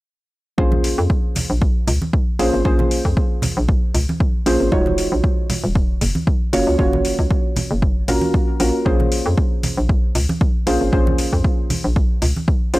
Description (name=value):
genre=deep house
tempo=116 BPM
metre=4/4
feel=swing 55% on 16ths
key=Bb minor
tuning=A4 = 443 Hz
part: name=deep mellow chord stab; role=stabs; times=0.6-12.8 s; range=Ab3 to Db5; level=-21 LUFS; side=right 1 dB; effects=chorus, cassette tape, sidechain pumping, tape echo
part: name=hollow knocking FM bass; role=bass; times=0.6-12.8 s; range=Eb1 to F2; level=-21 LUFS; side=equal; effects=tube saturation, sidechain pumping
part: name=electronic kick drum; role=drums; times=0.6-12.6 s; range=none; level=-18 LUFS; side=equal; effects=overdrive
part: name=congas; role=percussion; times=0.7-12.5 s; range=none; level=-25 LUFS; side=right 2 dB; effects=none
part: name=electronic hi-hat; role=drums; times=0.8-12.8 s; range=none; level=-28 LUFS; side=left 2 dB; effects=overdrive
room=little or no reverb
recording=none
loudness=-16 LUFS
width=side -19 dB against mid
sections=0.6-12.8 A section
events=none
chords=0.6 Bbm9; 4.7 Ebm11; 6.5 Gbmaj7; 8.9 Bbm9